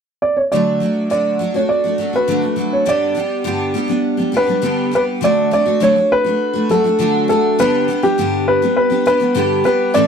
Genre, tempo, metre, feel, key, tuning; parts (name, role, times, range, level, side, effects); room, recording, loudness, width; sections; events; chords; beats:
pop; 102 BPM; 4/4; straight; D major; A4 = 440 Hz
dark upright piano; melody; 0.2-10.1 s; G4 to D5; -16 LUFS; right 1 dB
picked steel-string acoustic guitar; accompaniment; 0.5-10.1 s; G2 to A4; -17 LUFS; equal; double-tracked left and right
light reverb; dry, close 1970s-style studio recording; -14 LUFS; side -6 dB against mid
0.5-5.2 A section; 5.2-10.1 B section
0.0 N.C.; 0.5 D; 2.9 G; 5.2 D; 7.6 G
| 0.52 1.10 1.70 2.29 | 2.87 3.46 4.05 4.64 | 5.23 5.82 6.41 7.00 | 7.59 8.18 8.77 9.36 | 9.94